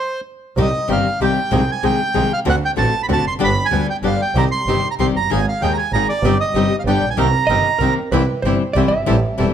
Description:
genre	tango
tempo	191 BPM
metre	3/4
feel	rubato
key	C minor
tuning	A4 = 439 Hz
part	bandoneon	melody	0.0-7.9 s	C5 to C6	-20 LUFS	right 4 dB	none
part	nylon-string guitar	accompaniment	0.6-9.5 s	C3 to Ab4	-20 LUFS	left 7 dB	none
part	bandoneon	stabs	0.6-9.5 s	Bb3 to Bb4	-27 LUFS	right 6 dB	none
part	clear double bass	bass	0.6-9.5 s	E1 to Eb2	-20 LUFS	right 2 dB	none
part	hollow-body jazz guitar	second line	7.5-9.5 s	Bb4 to E5	-22 LUFS	right 3 dB	slapback echo
room	light reverb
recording	close, detailed microphones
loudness	-15 LUFS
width	side -9 dB against mid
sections	0.6-8.1 A section; 8.1-9.5 B section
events	stop 0.0-0.6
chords	0.0 N.C.; 0.6 Cm; 1.5 Ab/C; 2.5 D7; 3.4 G; 4.4 Cm; 5.3 Absus2; 6.2 Cm/G; 6.9 G; 7.2 Cm7; 8.1 C

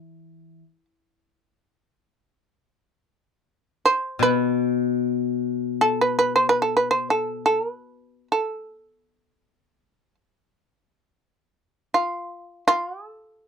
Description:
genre	japanese traditional, Japanese chamber music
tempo	free time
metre	none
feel	none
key	E miyako bushi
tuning	A4 = 439 Hz
part	shamisen	melody	0.0-13.5 s	F4 to E5	-20 LUFS	right 2 dB	none
part	koto	accompaniment	0.0-7.6 s	B2 to E3	-25 LUFS	left 7 dB	none
room	wet booth ambience, RT60 0.2 s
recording	none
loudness	-20 LUFS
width	side -6 dB against mid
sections	0.0-13.5 A section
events	slowing down 9.4-13.5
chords	none

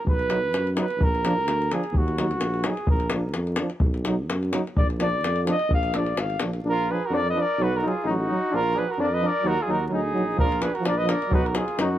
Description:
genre	balkan folk, Balkan brass band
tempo	128 BPM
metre	2/4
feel	swing 55% on 16ths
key	Bb phrygian dominant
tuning	A4 = 440 Hz
part	mellow flugelhorn	melody	0.0-12.0 s	Gb4 to F5	-26 LUFS	right 1 dB	none
part	mellow tuba	bass	0.0-12.0 s	Ab1 to F#2	-28 LUFS	equal	none
part	davul	percussion	0.1-6.6, 10.4-11.9 s	none	-25 LUFS	left 1 dB	none
part	bright trombone	accompaniment	0.3-11.9 s	D4 to D#4	-31 LUFS	left 3 dB	none
part	warm euphonium	accompaniment	0.3-11.9 s	F3 to F#3	-30 LUFS	right 3 dB	none
part	mellow trumpet	second line	6.7-12.0 s	D#4 to Cb5	-32 LUFS	right 3 dB	none
room	little or no reverb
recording	close, detailed microphones, vinyl crackle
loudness	-22 LUFS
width	side -12 dB against mid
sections	0.0-6.6 A section; 6.6-12.0 B section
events	flugelhorn solo 0.0-6.6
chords	0.1 B; 1.0 Bb; 1.9 Ebm; 2.9 Bb; 3.8 B; 4.8 Bb; 7.6 B; 8.5 Bb; 9.5 Ebm; 10.4 Bb; 11.3 B

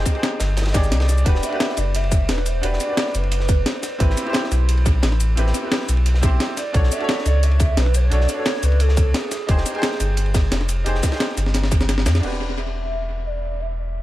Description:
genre	liquid drum and bass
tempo	175 BPM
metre	4/4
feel	straight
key	E minor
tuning	A4 = 440 Hz
part	bright baby grand piano	accompaniment	0.0-14.0 s	C4 to G5	-28 LUFS	right 1 dB	analog delay
part	warm sub bass	bass	0.0-14.0 s	E1 to F2	-19 LUFS	equal	none
part	breakbeat sampler-style drum kit	drums	0.1-12.3 s	crash cymbal, hi-hat, shaker, snare drum	-25 LUFS	left 1 dB	studio ambience, tape echo
part	crunchy breakbeat drum kit	drums	0.1-12.2 s	ride cymbal, snare drum	-32 LUFS	equal	high-pass filter on cymbals, studio ambience, high-pass filter on snare, high-pass filter on room
part	electronic kick drum	drums	0.1-11.8 s	none	-18 LUFS	equal	studio ambience
part	hollow clarinet-like synth lead	melody	1.1-10.1, 12.6-14.0 s	G#4 to E5	-29 LUFS	right 1 dB	lush chorus, tape echo
room	little or no reverb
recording	echo-heavy mix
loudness	-17 LUFS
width	side -15 dB against mid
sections	0.0-12.2 A section; 12.2-14.0 B section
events	drop 0.0-12.2; drum fill 11.5-12.2; band accent 12.1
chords	0.0 Fm9 (rootless); 1.3 Em9; 3.8 Am9; 6.6 Bm9; 9.3 Fm9; 12.2 Em9

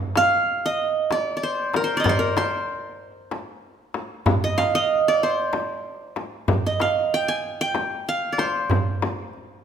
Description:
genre	Turkish makam ensemble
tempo	190 BPM (eighths)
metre	7/8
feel	straight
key	C makam ussak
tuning	A4 = 440 Hz
part	qanun	melody	0.2-9.6 s	Bb4 to Ab5	-21 LUFS	right 2 dB	none
part	darbuka	percussion	0.2-9.4 s	none	-27 LUFS	right 3 dB	none
part	frame drum	percussion	0.2-9.2 s	none	-27 LUFS	left 4 dB	none
room	wet recital hall reverb, RT60 1.7 s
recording	minimal, uncompressed stereo recording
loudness	-20 LUFS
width	side -8 dB against mid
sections	0.0-9.6 A section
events	none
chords	none

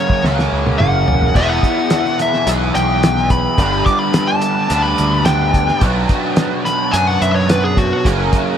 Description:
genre	psychedelic rock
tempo	108 BPM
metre	4/4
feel	straight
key	unclear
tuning	A4 = 441 Hz
part	fuzz lead guitar	melody	0.0-8.0 s	F#4 to D6	-18 LUFS	left 1 dB	distortion, analog delay
part	crunchy overdriven guitar	riff	0.0-8.6 s	E2 to G#4	-17 LUFS	right 1 dB	flanger
part	cloth-damped thuddy drum kit	drums	0.1-8.5 s	crash cymbal, hi-hat, kick drum, snare drum, splash cymbal, toms	-16 LUFS	equal	none
part	overdriven picked electric bass	bass	0.2-8.3 s	E1 to F#2	-19 LUFS	equal	none
room	light reverb, small room ambience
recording	lossy compression artefacts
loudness	-13 LUFS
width	side -9 dB against mid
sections	0.0-8.6 A section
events	lead electric guitar solo 0.0-8.6; drum fill 0.2-1.3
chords	0.0 F#; 1.3 E; 3.6 Gadd9; 5.8 Bm; 8.0 F#

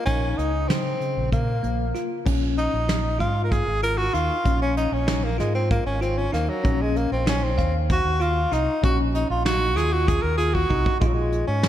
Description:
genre	progressive instrumental, band music in an uneven meter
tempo	192 BPM (eighths)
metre	7/8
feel	straight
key	Bb minor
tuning	A4 = 440 Hz
part	breathy tenor saxophone	melody	0.0-11.7 s	Gb3 to Bb4	-25 LUFS	equal	slapback echo
part	bell-like tine electric piano	arpeggios	0.1-11.7 s	Db3 to F5	-29 LUFS	left 2 dB	fast stereo tremolo, slapback echo, tape echo
part	overdriven fingered electric bass	bass	0.1-11.7 s	Ab1 to Bb2	-25 LUFS	equal	none
part	soft brush drum kit	drums	0.1-11.7 s	crash cymbal, hi-hat, kick drum, snare drum	-26 LUFS	right 1 dB	none
room	moderate lush hall reverb, RT60 2.6 s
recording	big arena sound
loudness	-20 LUFS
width	side -11 dB against mid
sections	0.0-2.3 A section; 2.3-11.0 B section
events	tenor saxophone solo 2.3-11.0; drum fill 10.5-11.0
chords	0.0 Bbmadd9; 2.3 Bbm7; 6.6 Bbmadd11; 11.0 Bbm7

